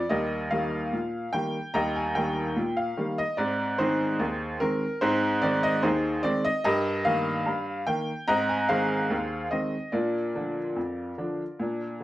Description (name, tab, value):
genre	ragtime piano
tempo	73 BPM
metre	2/4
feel	straight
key	Eb major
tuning	A4 = 441 Hz
part	bright upright piano	solo	0.0-12.0 s	Eb2 to Bb5	-25 LUFS	equal	none
room	moderate studio reverb, RT60 0.5 s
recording	none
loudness	-25 LUFS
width	side -15 dB against mid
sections	0.0-12.0 A section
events	none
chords	0.1 Eb; 3.4 Ab; 6.6 Eb/G; 8.3 Ab; 9.9 Bb